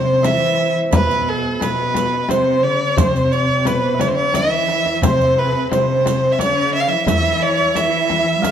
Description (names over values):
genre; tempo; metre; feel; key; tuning
Persian modal ensemble; 88 BPM; 3/4; straight; unclear; A4 = 440 Hz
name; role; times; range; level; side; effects
rich violin; melody; 0.0-8.5 s; A4-49c to F5; -17 LUFS; right 1 dB; none
dark symphonic cello section; second line; 0.0-8.5 s; B2 to G3; -21 LUFS; left 2 dB; none
santur; second line; 0.0-8.5 s; Ab4+45c to F5; -25 LUFS; right 3 dB; none
frame drum; percussion; 0.2-8.5 s; none; -23 LUFS; left 4 dB; none
riq; percussion; 0.2-8.5 s; none; -28 LUFS; right 5 dB; none
tombak; percussion; 0.2-8.5 s; none; -26 LUFS; right 2 dB; none
room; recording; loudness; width
wet recital hall reverb, RT60 1.4 s; none; -14 LUFS; side -9 dB against mid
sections
0.0-8.5 A section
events
drum fill 4.3-5.0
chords
none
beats
0.24 | 0.93 1.61 2.29 | 2.98 3.66 4.34 | 5.03 5.71 6.40 | 7.08 7.76 8.45